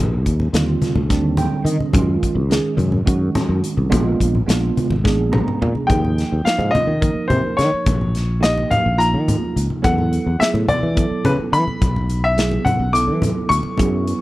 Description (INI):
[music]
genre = electric jazz fusion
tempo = 213 BPM (eighths)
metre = 7/8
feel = straight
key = unclear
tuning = A4 = 440 Hz
[part]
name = tine electric piano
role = accompaniment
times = 0.0-14.2 s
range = D3 to Bb5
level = -22 LUFS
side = right 3 dB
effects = ensemble chorus
[part]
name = sustaining fretless electric bass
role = bass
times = 0.0-14.1 s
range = Ab1 to E3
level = -19 LUFS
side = equal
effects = none
[part]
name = modern studio drum kit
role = drums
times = 0.3-14.2 s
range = hi-hat, kick drum, snare drum, toms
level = -22 LUFS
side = equal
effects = none
[part]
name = congas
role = percussion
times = 0.3-13.9 s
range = none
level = -24 LUFS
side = left 1 dB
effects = none
[part]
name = clear baby grand piano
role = melody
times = 5.9-14.2 s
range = B4 to D6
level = -21 LUFS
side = left 2 dB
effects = slapback echo
[sound]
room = little or no reverb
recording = none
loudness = -16 LUFS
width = side -17 dB against mid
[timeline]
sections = 0.0-5.9 A section; 5.9-14.2 B section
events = tine electric piano fill 1.1-1.9, 5.0-5.9; drum fill 5.0-5.9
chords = 0.0 Ebmaj9; 1.9 Gbsus2; 3.9 Bb7b9; 5.9 Eb9sus4; 9.8 E9sus4